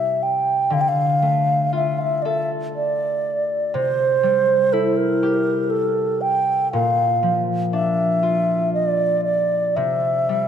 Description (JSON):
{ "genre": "celtic folk, Celtic slow air", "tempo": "60 BPM", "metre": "3/4", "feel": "rubato", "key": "unclear", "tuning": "A4 = 441 Hz", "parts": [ { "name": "mellow baroque flute", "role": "melody", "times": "0.0-10.5 s", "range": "A4 to G5", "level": "-19 LUFS", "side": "right 1 dB", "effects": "none" }, { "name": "concert harp", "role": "accompaniment", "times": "0.0-10.5 s", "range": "Bb2 to A4", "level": "-24 LUFS", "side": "left 2 dB", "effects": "none" } ], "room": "wet church reverb, RT60 3.4 s", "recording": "none", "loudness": "-17 LUFS", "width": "side -8 dB against mid", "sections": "0.0-10.5 A section", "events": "none", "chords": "0.0 C; 0.7 Dm; 3.7 C; 6.7 Bb; 9.8 C" }